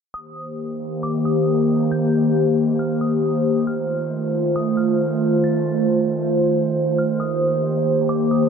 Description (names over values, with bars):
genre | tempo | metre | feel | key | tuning
hip hop | 136 BPM | 4/4 | half-time | Eb lydian | A4 = 440 Hz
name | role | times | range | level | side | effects
glassy synth bell | melody | 0.1-8.5 s | D6 to A6 | -36 LUFS | equal | chorus, tape echo
airy breathy pad | sustained chords | 0.4-8.5 s | Eb3 to C5 | -18 LUFS | equal | chorus
room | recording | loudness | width
moderate lush hall reverb, RT60 2.4 s | dark, warm production, low-pass filter | -18 LUFS | side -6 dB against mid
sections
0.1-8.5 A section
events
filter sweep 0.1-8.5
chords
0.1 Eb6; 3.7 F7; 7.2 Eb6